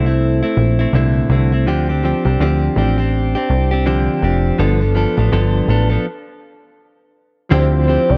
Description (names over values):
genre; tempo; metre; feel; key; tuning
indie pop, bedroom pop; 82 BPM; 4/4; swing 60% on 16ths; D minor; A4 = 440 Hz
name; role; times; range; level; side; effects
direct-recorded clean electric guitar; accompaniment; 0.0-8.2 s; G2 to A4; -20 LUFS; equal; subtle chorus, warbly pitch drift
plucky analog bass; bass; 0.0-8.2 s; F1 to D2; -18 LUFS; equal; none
soft octave-layered synth lead; melody; 7.5-8.2 s; C5 to D5; -20 LUFS; equal; tremolo, analog chorus
chorused retro synth keys; accompaniment; 7.5-8.2 s; F3 to G4; -26 LUFS; equal; none
room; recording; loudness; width
light reverb; worn, warbling old tape, cassette tape, warbly pitch drift; -16 LUFS; mono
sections
0.0-7.5 A section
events
stop 6.1-7.5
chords
0.0 Bbmaj9#11; 1.7 Dm7; 4.6 G9; 7.5 Dm11